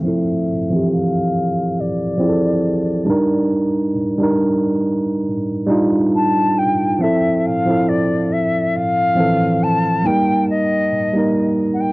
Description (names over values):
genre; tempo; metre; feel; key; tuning
hip hop; 69 BPM; 4/4; swing 58% on 16ths; F major; A4 = 442 Hz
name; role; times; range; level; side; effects
tine electric piano; accompaniment; 0.0-11.9 s; E3 to Bb4; -16 LUFS; right 1 dB; cassette tape, low-pass filter
concert flute; melody; 0.1-11.9 s; D5 to A5; -20 LUFS; left 1 dB; low-pass filter, cassette tape, analog delay
room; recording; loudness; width
light reverb; home recording on cassette; -15 LUFS; side -20 dB against mid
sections
0.0-11.9 A section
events
filter sweep 0.0-11.9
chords
0.0 Fmaj7; 3.1 Ebmaj7; 7.0 Fmaj7; 10.0 Eb